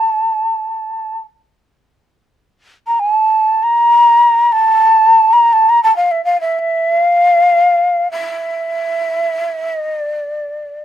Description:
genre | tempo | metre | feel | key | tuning
japanese traditional, Japanese chamber music | free time | none | none | unclear | A4 = 439 Hz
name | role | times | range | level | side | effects
breathy mellow shakuhachi | solo | 0.0-10.8 s | E5 to Bb5 | -11 LUFS | equal | none
room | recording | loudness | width
little or no reverb | close, detailed microphones | -11 LUFS | side -10 dB against mid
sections
0.0-10.8 A section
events
none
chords
none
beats
free time

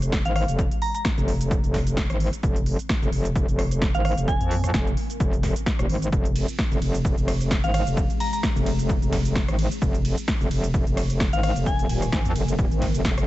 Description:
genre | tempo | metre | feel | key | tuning
bass house | 130 BPM | 4/4 | swing 55% on 16ths | F minor | A4 = 441 Hz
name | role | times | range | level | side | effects
deep dark ambient pad | sustained chords | 0.5-13.3 s | C4 to Bb4 | -36 LUFS | left 1 dB | none
metallic wobble bass | bass | 0.0-13.3 s | Eb1 to F2 | -24 LUFS | equal | chorus, tube saturation, sidechain pumping
big-room dance drum kit | drums | 0.0-13.3 s | cabasa, hi-hat, ride cymbal, rim click, snare drum | -31 LUFS | equal | overdrive
electronic kick drum | drums | 0.1-13.2 s | none | -24 LUFS | equal | overdrive
soft synth bell | melody | 0.3-1.0, 3.9-4.7, 7.6-8.4, 11.3-12.1 s | F5 to Bb5 | -30 LUFS | equal | chorus, dub echo
room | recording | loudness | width
little or no reverb | nothing above 8.0 kHz | -21 LUFS | side -16 dB against mid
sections
0.0-13.3 A section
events
none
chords
0.0 Fm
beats
0.13 | 0.59 1.05 1.51 1.97 | 2.43 2.90 3.36 3.82 | 4.28 4.74 5.20 5.66 | 6.13 6.59 7.05 7.51 | 7.97 8.43 8.89 9.36 | 9.82 10.28 10.74 11.20 | 11.66 12.13 12.59 13.05

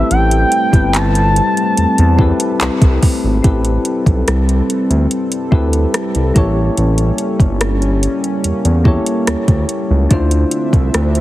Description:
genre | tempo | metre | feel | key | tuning
contemporary R&B | 72 BPM | 4/4 | straight | A minor | A4 = 440 Hz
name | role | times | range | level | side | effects
gliding portamento lead | melody | 0.0-3.0 s | G5 to A5 | -17 LUFS | equal | chorus, tape echo
soft electric-piano-like synth keys | accompaniment | 0.0-11.2 s | A3 to C#5 | -19 LUFS | left 2 dB | chorus
warm analog pad | sustained chords | 0.0-11.2 s | D3 to E5 | -20 LUFS | equal | chorus
smooth synth bass | bass | 0.0-11.2 s | G1 to E2 | -14 LUFS | equal | none
smooth R&B drum kit | drums | 0.1-11.2 s | handclaps, hi-hat, kick drum, rim click | -15 LUFS | equal | none
room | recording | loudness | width
light reverb, digital ambience | heavily compressed radio sound, multiband compression | -12 LUFS | side -15 dB against mid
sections
0.0-3.4 A section; 3.4-11.2 B section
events
none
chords
0.0 Am7; 6.4 A7b9; 10.1 Dm9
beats
| 0.11 0.94 1.77 2.61 | 3.44 4.28 5.11 5.94 | 6.78 7.61 8.44 9.28 | 10.11 10.94

